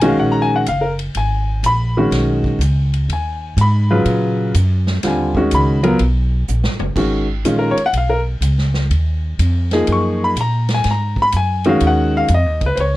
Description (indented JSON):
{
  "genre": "modal jazz",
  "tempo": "124 BPM",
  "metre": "4/4",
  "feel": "swing 67% on 8ths",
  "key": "G# dorian from 7.0 s",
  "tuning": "A4 = 440 Hz",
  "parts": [
    { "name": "clear concert grand piano", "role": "accompaniment", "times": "0.0-13.0 s", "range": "Db3 to C#6", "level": "-16 LUFS", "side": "left 1 dB", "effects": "none" },
    { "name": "upright bass", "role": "bass", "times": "0.0-13.0 s", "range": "Gb1 to Bb2", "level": "-17 LUFS", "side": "equal", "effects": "none" },
    { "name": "swinging big-band drum kit", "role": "drums", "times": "0.0-13.0 s", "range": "crash cymbal, hi-hat, kick drum, ride cymbal, snare drum, toms", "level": "-28 LUFS", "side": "equal", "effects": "none" }
  ],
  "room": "little or no reverb",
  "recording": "none",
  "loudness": "-14 LUFS",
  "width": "side -16 dB against mid",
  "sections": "0.0-7.0 A section; 7.0-13.0 A section",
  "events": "drum fill 6.5-7.0",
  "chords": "0.0 Abm9; 7.0 G#13sus4",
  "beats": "0.18 0.67 | 1.15 1.64 2.12 2.60 | 3.09 3.57 4.06 4.54 | 5.03 5.51 6.00 6.48 | 6.96 7.45 7.93 8.42 | 8.90 9.39 9.87 10.36 | 10.84 11.33 11.81 12.29 | 12.78"
}